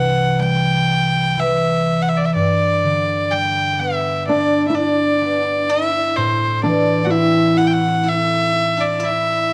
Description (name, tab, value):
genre	celtic folk, Celtic slow air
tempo	62 BPM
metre	4/4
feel	rubato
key	unclear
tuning	A4 = 440 Hz
part	warm fiddle	melody	0.0-9.5 s	C5 to G5	-20 LUFS	equal	none
part	concert harp	accompaniment	0.0-9.5 s	C2 to A4	-22 LUFS	equal	none
part	flamenco guitar	second line	4.3-9.5 s	C4 to G4	-23 LUFS	equal	tape echo
room	light reverb, studio reverb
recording	none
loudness	-17 LUFS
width	mono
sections	0.0-9.5 A section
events	none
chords	0.0 C; 2.4 G; 6.2 Am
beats	0.39 1.38 | 2.35 3.32 4.28 5.22 | 6.17 7.12 8.05 9.02